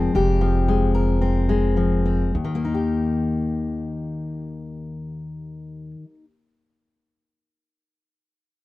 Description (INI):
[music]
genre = folk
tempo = 100-118 BPM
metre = 4/4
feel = straight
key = Eb major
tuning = A4 = 440 Hz
[part]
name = fingerpicked steel-string acoustic guitar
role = accompaniment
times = 0.0-6.3 s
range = Eb2 to Bb4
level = -23 LUFS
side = left 3 dB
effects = none
[part]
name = upright bass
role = bass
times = 0.0-5.9 s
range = F1 to Eb2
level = -24 LUFS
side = right 1 dB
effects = none
[sound]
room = little or no reverb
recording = dry, close 1970s-style studio recording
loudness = -19 LUFS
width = side -17 dB against mid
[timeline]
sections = 0.0-2.3 A section; 2.3-7.1 B section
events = slowing down 0.0-2.3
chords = 0.0 Fmadd9; 2.3 Eb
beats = | 0.14 0.66 1.20 1.76 | 2.34 2.94 3.54 4.13 | 4.73 5.33 5.93